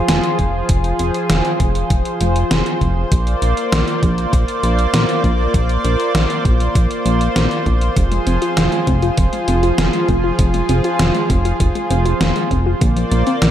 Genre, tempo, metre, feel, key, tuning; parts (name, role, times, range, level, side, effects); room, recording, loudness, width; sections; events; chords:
synthwave; 99 BPM; 4/4; straight; F dorian; A4 = 438 Hz
lush unison pad; sustained chords; 0.0-13.5 s; F3 to D5; -19 LUFS; equal; chorus, sidechain pumping
chorused synth bass; bass; 0.1-13.5 s; F1 to Bb1; -17 LUFS; equal
gated 80s digital drum machine; drums; 0.1-13.5 s; hi-hat, snare drum; -21 LUFS; equal; gated reverb, gated reverb snare, overdrive
electronic kick drum; drums; 0.4-12.9 s; -18 LUFS; equal; overdrive
soft round pluck; arpeggios; 8.0-13.5 s; D3 to F4; -22 LUFS; left 2 dB; chorus, digital delay
light reverb, digital ambience; dark, warm production; -14 LUFS; side -11 dB against mid
0.0-13.5 A section
0.0 Fm; 3.1 Bbadd9; 8.0 Fm; 12.8 Bbadd9